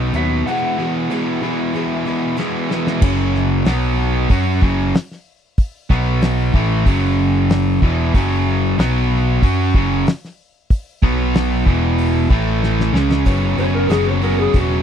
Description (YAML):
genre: classic rock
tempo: 94 BPM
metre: 4/4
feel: straight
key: unclear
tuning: A4 = 442 Hz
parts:
  - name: electric slide guitar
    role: melody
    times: 0.0-1.4, 13.6-14.8 s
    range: F#4 to F#5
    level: -21 LUFS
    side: left 2 dB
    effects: none
  - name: picked twelve-string acoustic guitar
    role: accompaniment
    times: 0.0-3.0, 13.3-14.8 s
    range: F#2 to F#4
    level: -28 LUFS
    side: left 2 dB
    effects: ensemble chorus
  - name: biting overdriven guitar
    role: riff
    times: 0.0-14.8 s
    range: E2 to F#4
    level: -20 LUFS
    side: right 14 dB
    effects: none
  - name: cranked stack guitar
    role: riff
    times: 0.0-14.8 s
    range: E2 to F#4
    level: -21 LUFS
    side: left 14 dB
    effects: overdrive
  - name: picked electric bass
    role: bass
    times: 0.0-14.8 s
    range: E1 to F#2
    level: -19 LUFS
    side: equal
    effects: none
  - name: damped 70s drum kit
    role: drums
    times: 0.1-14.7 s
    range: crash cymbal, hi-hat, kick drum, snare drum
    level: -16 LUFS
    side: equal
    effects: none
room: little or no reverb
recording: dry, close 1970s-style studio recording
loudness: -15 LUFS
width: side -8 dB against mid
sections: 0.0-3.0 A section; 3.0-13.3 B section; 13.3-14.8 C section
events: break 0.5-3.0; drum fill 2.4-3.0, 12.6-13.3; electric slide guitar solo 13.3-14.8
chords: 0.5 Eadd9; 3.0 F#5; 3.7 B5; 4.3 F#5; 5.9 B5; 6.5 F#5; 8.8 B5; 9.4 F#5; 11.0 B5; 11.7 E5; 12.3 A5; 12.9 C#5; 13.3 F#sus4